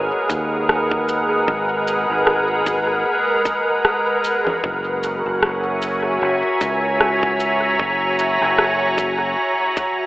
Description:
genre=ambient dub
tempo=76 BPM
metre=4/4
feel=swing 57% on 16ths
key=G# minor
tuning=A4 = 440 Hz
part: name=soft additive organ-like pad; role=sustained chords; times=0.0-10.1 s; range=G#3 to A#5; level=-18 LUFS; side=equal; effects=ensemble chorus, built-in reverb
part: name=fingered electric bass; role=bass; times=0.0-9.3 s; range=F#1 to D#2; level=-27 LUFS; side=equal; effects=none
part: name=electronic kick drum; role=drums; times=0.3-9.9 s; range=none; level=-24 LUFS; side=equal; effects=studio reverb
part: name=electronic shaker, rim click and congas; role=drums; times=0.3-9.9 s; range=none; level=-22 LUFS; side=equal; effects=studio reverb, dub echo
room=wet huge ambient reverb, RT60 6.5 s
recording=telephone sound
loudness=-16 LUFS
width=side -18 dB against mid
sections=0.0-10.1 A section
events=none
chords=0.0 G#m9; 4.6 F#9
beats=0.69 | 1.48 2.27 3.06 3.85 | 4.64 5.43 6.22 7.01 | 7.80 8.59 9.38

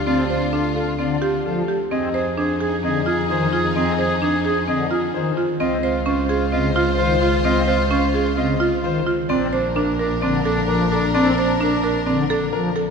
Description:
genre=classical, minimalist pattern music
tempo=130 BPM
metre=4/4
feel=straight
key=Bb major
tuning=A4 = 440 Hz
part: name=warm symphonic violin section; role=sustained chords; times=0.0-12.7 s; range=D4 to C5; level=-27 LUFS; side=left 6 dB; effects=none
part: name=buzzing marimba with medium hard mallets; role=arpeggios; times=0.0-12.9 s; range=C4 to C5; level=-22 LUFS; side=right 4 dB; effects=none
part: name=warm double bass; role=bass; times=0.0-12.9 s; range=Bb1 to F2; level=-25 LUFS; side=right 2 dB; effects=none
part: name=clear concert grand piano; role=melody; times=0.1-12.8 s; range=A4 to Eb5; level=-28 LUFS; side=left 10 dB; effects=none
part: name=clear oboe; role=second line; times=0.1-12.7 s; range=D4 to Ab4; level=-26 LUFS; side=equal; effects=none
part: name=pipe organ, strings celeste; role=accompaniment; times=0.1-12.7 s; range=Db3 to C4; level=-27 LUFS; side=left 2 dB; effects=none
room=wet church reverb, RT60 3.2 s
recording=recorded in a church or concert hall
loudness=-17 LUFS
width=side -5 dB against mid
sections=0.0-12.9 A section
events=none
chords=0.0 Dm7; 1.9 Fm7; 5.6 Dbmaj7; 9.3 Bbmaj7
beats=| 0.07 0.53 0.99 1.45 | 1.91 2.37 2.83 3.30 | 3.76 4.22 4.68 5.14 | 5.60 6.07 6.53 6.99 | 7.45 7.91 8.37 8.84 | 9.30 9.76 10.22 10.68 | 11.14 11.60 12.07 12.53

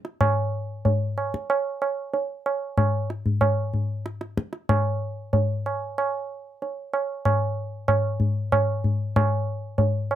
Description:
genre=indian classical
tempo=94 BPM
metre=7/4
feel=straight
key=none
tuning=none
part: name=tabla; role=percussion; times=0.0-10.2 s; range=none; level=-22 LUFS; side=equal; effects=none
room=light reverb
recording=close, detailed microphones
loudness=-23 LUFS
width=side -11 dB against mid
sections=0.0-10.2 A section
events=none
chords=none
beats=| 0.21 0.85 1.50 2.14 2.78 3.42 4.06 | 4.70 5.34 5.97 6.61 7.25 7.88 8.52 | 9.15 9.79

